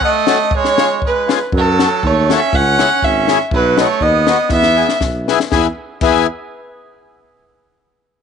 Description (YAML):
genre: alpine folk, alpine dance band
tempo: 120 BPM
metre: 2/4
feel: swing 54% on 8ths, rubato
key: E major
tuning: A4 = 439 Hz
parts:
  - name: dark fiddle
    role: melody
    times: 0.0-5.0 s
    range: A4 to F#5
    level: -16 LUFS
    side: equal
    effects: none
  - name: clear trumpet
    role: second line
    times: 0.0-5.0 s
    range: F#3 to C#4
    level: -19 LUFS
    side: right 14 dB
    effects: none
  - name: compact cocktail drum kit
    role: drums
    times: 0.0-6.1 s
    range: crash cymbal, hi-hat, kick drum, snare drum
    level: -20 LUFS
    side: left 3 dB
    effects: none
  - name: accordion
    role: accompaniment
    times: 0.3-6.3 s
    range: B3 to A4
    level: -18 LUFS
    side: left 12 dB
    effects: none
  - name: warm tuba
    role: bass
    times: 1.5-6.3 s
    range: G#1 to F#2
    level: -18 LUFS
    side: right 1 dB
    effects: none
room: light reverb, small room ambience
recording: 1960s-style stereo with parts hard left and right, nothing above 10.6 kHz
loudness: -12 LUFS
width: side -7 dB against mid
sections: 0.0-5.5 A section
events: drum fill 4.5-5.5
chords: 0.0 F#m; 0.5 C#; 1.5 F#m; 2.5 C#m; 3.5 B; 4.5 E